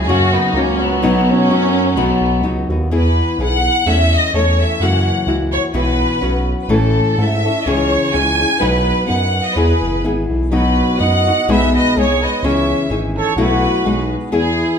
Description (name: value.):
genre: mexican folk, mariachi.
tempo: 126 BPM.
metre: 2/4.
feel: swing 54% on 8ths.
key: E major.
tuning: A4 = 440 Hz.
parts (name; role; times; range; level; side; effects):
rich studio violin section; melody; 0.0-14.8 s; B3 to G#5; -18 LUFS; equal; none.
dark trumpet; second line; 0.0-2.5, 9.6-14.8 s; F#3 to D#5; -23 LUFS; right 6 dB; none.
nylon-string guitar; accompaniment; 0.0-14.8 s; F#2 to B4; -17 LUFS; left 2 dB; none.
smooth synth bass; bass; 0.0-14.6 s; F#1 to G#2; -19 LUFS; right 1 dB; none.
room: moderate recital hall reverb, RT60 1.4 s.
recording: minimal, uncompressed stereo recording.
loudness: -13 LUFS.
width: side -7 dB against mid.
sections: 0.0-2.9 A section; 2.9-14.8 B section.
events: none.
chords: 0.0 F#; 1.0 B; 2.9 E; 3.9 A/E; 4.8 F#7; 5.8 Bsus4; 6.2 Bsus2; 6.7 A; 7.7 C#m; 8.6 B; 9.6 E; 10.5 B; 11.5 G#m/B; 12.4 C#madd9; 13.4 B7sus4; 13.8 B6.